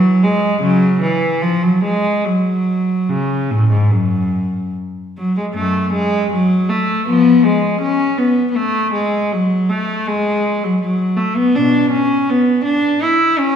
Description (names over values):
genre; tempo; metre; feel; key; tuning
classical, baroque-style suite movement for unaccompanied cello; 71-83 BPM; 4/4; rubato; F# minor; A4 = 438 Hz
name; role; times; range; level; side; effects
rich cello; solo; 0.0-13.6 s; F#2 to E4; -14 LUFS; equal; none
room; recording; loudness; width
wet recital hall reverb, RT60 1.6 s; recorded in a church or concert hall; -14 LUFS; side -8 dB against mid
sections
0.0-5.6 A section; 5.6-13.6 B section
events
none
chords
none